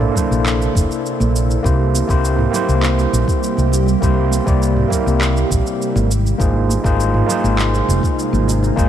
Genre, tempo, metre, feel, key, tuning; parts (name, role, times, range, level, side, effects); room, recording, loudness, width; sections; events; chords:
sunset chillout; 101 BPM; 4/4; straight; A4 = 436 Hz
overdriven tine electric piano; accompaniment; 0.0-8.9 s; Bb3 to D5; -20 LUFS; equal; auto-pan, vintage 12-bit sampler grit, ping-pong delay
ethereal airy pad; sustained chords; 0.0-8.9 s; C3 to A4; -22 LUFS; right 2 dB; ensemble chorus, built-in reverb, phaser
woody fretless electric bass; bass; 0.0-8.9 s; F1 to C2; -17 LUFS; equal; tube saturation
smooth R&B drum kit; drums; 0.0-8.9 s; handclaps, shaker, toms; -25 LUFS; right 1 dB
electronic kick drum; drums; 0.2-8.9 s; -19 LUFS; equal
congas and bongos; percussion; 0.2-8.7 s; -27 LUFS; left 2 dB
light reverb, digital ambience; -14 LUFS; side -10 dB against mid
0.0-8.9 A section
0.0 Bbmaj9#11; 1.6 C7; 6.1 Ab69